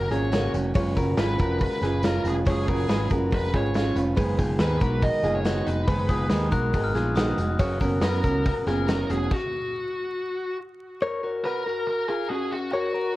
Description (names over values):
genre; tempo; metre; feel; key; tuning
jangly indie pop; 140 BPM; 4/4; straight; unclear; A4 = 439 Hz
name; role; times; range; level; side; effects
bluesy overdriven lead guitar; melody; 0.0-13.2 s; F#4 to D#5; -30 LUFS; equal; distortion, tape echo
picked steel-string acoustic guitar; accompaniment; 0.0-9.3 s; F#2 to B4; -28 LUFS; right 3 dB; none
direct-recorded clean electric guitar; arpeggios; 0.0-13.1 s; C#4 to C#5; -28 LUFS; left 2 dB; spring reverb
picked electric bass; bass; 0.0-9.3 s; E#1 to F#2; -27 LUFS; equal; none
big rock drum kit; drums; 0.1-9.4 s; crash cymbal, hi-hat, kick drum, snare drum; -27 LUFS; equal; none
tambourine; percussion; 0.1-9.2 s; none; -50 LUFS; left 5 dB; none
glockenspiel with hard plastic mallets; second line; 6.1-7.9 s; D#6 to F#6; -34 LUFS; left 3 dB; none
room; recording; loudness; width
moderate studio ambience, RT60 0.5 s; worn, warbling old tape, cassette tape, vinyl crackle, warbly pitch drift; -22 LUFS; side -17 dB against mid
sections
0.0-11.0 A section; 11.0-13.2 A section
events
stop 9.3-11.0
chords
0.0 C#7; 4.2 G#madd9; 7.6 Bsus2; 11.0 N.C.